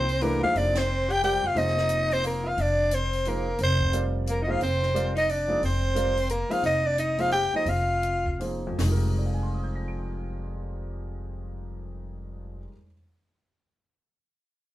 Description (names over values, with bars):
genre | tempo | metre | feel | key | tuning
modal jazz | 150-178 BPM | 3/4 | swing 62% on 8ths | F dorian | A4 = 444 Hz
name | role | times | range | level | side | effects
growling soprano saxophone | melody | 0.0-8.4 s | Bb4 to G5 | -25 LUFS | equal | none
breathy tenor saxophone | second line | 0.0-8.4 s | Bb3 to G4 | -32 LUFS | left 1 dB | none
warm concert grand piano | accompaniment | 0.0-13.0 s | F2 to D7 | -33 LUFS | right 1 dB | none
upright bass | bass | 0.0-12.6 s | F1 to Eb2 | -29 LUFS | equal | none
compact cocktail drum kit | drums | 0.1-8.9 s | hi-hat, kick drum, ride cymbal, snare drum, toms | -38 LUFS | left 1 dB | none
room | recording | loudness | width
moderate studio reverb, RT60 0.6 s | band playing live in one room | -23 LUFS | side -14 dB against mid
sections
0.0-6.6 A section; 6.6-8.8 B section; 8.8-11.2 C section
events
band accent 0.7; slowing down 6.6-8.8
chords
0.0 Fm11; 6.6 Fm7; 8.8 Fm11